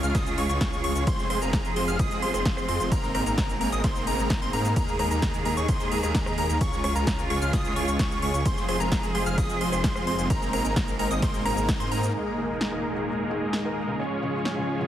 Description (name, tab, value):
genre	EDM, festival progressive house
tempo	130 BPM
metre	4/4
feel	straight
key	unclear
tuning	A4 = 441 Hz
part	clear studio string section	sustained chords	0.0-14.9 s	Db2 to Ab4	-32 LUFS	right 2 dB	sidechain pumping
part	plucky unison lead	arpeggios	0.0-12.1 s	Bb5 to F6	-31 LUFS	left 1 dB	sidechain pumping, ping-pong delay
part	dense compressed supersaw	riff	0.0-14.9 s	Ab3 to F5	-29 LUFS	equal	sidechain pumping, low-pass filter, ping-pong delay
part	detuned saw bass	bass	0.0-12.1 s	F1 to Ab2	-31 LUFS	equal	sidechain pumping
part	big-room dance drum kit	drums	0.0-14.5 s	hi-hat, ride cymbal, rim click, shaker, snare drum	-33 LUFS	equal	overdrive
part	electronic kick drum	drums	0.1-11.8 s	none	-28 LUFS	equal	overdrive
part	impact	sound effects	12.1-14.0 s	none	-46 LUFS	equal	none
part	felt-muted upright piano	accompaniment	12.4-14.9 s	Db3 to Bb4	-32 LUFS	left 1 dB	sidechain pumping, ping-pong delay
room	light reverb, digital ambience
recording	heavily compressed radio sound, multiband compression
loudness	-23 LUFS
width	side -11 dB against mid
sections	0.0-12.1 A section; 12.1-14.9 B section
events	drop 0.0-12.1; band accent 11.7; impact 12.1-14.0; filter sweep on supersaw synth 12.1-14.9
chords	0.0 Db; 1.1 Fm; 2.9 Abadd9; 4.8 Ebsus4; 6.6 Db; 8.5 Fm; 10.3 Abadd9; 12.1 Ebsus4; 14.0 Db